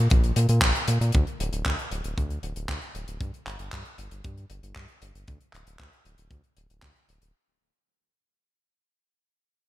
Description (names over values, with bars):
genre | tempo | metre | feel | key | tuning
italo disco | 116 BPM | 4/4 | straight | unclear | A4 = 440 Hz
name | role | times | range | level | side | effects
round analog bass | bass | 0.0-7.3 s | D1 to Bb2 | -26 LUFS | equal | tube saturation
kick drum | drums | 0.1-6.9 s | none | -26 LUFS | equal | none
tight funk drum kit | drums | 0.1-7.3 s | handclaps, hi-hat | -30 LUFS | equal | gated reverb
room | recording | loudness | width
light reverb | bright 1980s-style digital production | -23 LUFS | side -15 dB against mid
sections
0.0-7.3 A section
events
fade-out 0.0-7.3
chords
none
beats
0.10 0.62 | 1.14 1.66 2.17 2.69 | 3.21 3.72 4.24 4.76 | 5.28 5.79 6.31 6.83